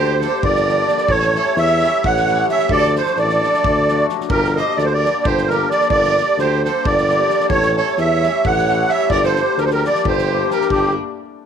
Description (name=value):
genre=balkan folk, Balkan wedding band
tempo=262 BPM (eighths)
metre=7/8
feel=straight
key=G harmonic minor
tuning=A4 = 440 Hz
part: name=musette accordion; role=melody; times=0.0-10.9 s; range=G4 to F#5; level=-16 LUFS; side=right 3 dB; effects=none
part: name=clear violin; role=second line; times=0.0-10.9 s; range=D4 to C#5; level=-26 LUFS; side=right 10 dB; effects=none
part: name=cimbalom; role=accompaniment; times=0.0-11.0 s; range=D3 to G4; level=-22 LUFS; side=left 15 dB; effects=none
part: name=mellow tuba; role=bass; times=0.0-10.9 s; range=G1 to E2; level=-21 LUFS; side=left 1 dB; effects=none
part: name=natural country drum kit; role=percussion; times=0.2-10.9 s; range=kick drum, snare drum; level=-26 LUFS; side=right 1 dB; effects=none
room=light reverb, small room ambience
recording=1960s-style stereo with parts hard left and right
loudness=-14 LUFS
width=side -8 dB against mid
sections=0.0-10.7 A section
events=none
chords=0.0 Gm; 1.1 A7; 2.7 D; 4.3 Gm; 7.5 A7; 9.1 Gm